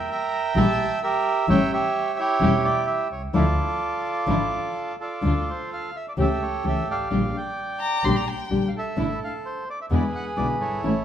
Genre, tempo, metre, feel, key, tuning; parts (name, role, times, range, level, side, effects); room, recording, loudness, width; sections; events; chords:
tango; 128 BPM; 4/4; rubato; D minor; A4 = 438 Hz
bandoneon; melody; 0.0-11.0 s; E4 to Bb5; -25 LUFS; right 3 dB
nylon-string guitar; accompaniment; 0.5-10.9 s; B2 to G4; -26 LUFS; left 3 dB
muted studio string section; stabs; 0.6-11.0 s; F3 to G4; -31 LUFS; left 1 dB
dark double bass; bass; 0.6-11.0 s; E1 to E2; -27 LUFS; right 1 dB
warm violin; second line; 7.8-8.6 s; G5 to C6; -26 LUFS; left 4 dB
wet stone room reverb, RT60 1.4 s; band playing live in one room; -21 LUFS; side -9 dB against mid
0.0-5.2 A section; 5.2-11.0 B section
0.0 Edim; 1.5 A7; 3.3 Dmadd9; 5.2 Dm; 6.2 A7/C#; 7.1 Bb6; 8.0 Gm/Bb; 9.0 Asus4; 9.9 E7